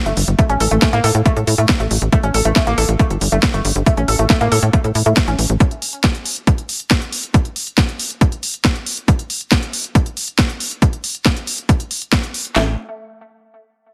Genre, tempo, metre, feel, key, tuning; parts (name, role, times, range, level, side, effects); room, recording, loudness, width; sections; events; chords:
psychedelic trance; 138 BPM; 4/4; straight; A4 = 442 Hz
woody wave-folded pluck; riff; 0.1-5.4, 12.6-12.8 s; A3 to A4; -23 LUFS; equal; chorus, sidechain pumping, tape echo
tight sequencer bass; bass; 0.1-5.6, 12.6-12.8 s; G1 to A2; -19 LUFS; equal
techno drum kit; drums; 0.1-12.5 s; hi-hat, snare drum; -22 LUFS; equal
techno drum kit; drums; 0.4-12.7 s; handclaps, kick drum, snare drum; -16 LUFS; equal
little or no reverb; -17 LUFS; mono
0.0-12.6 A section; 12.6-13.9 B section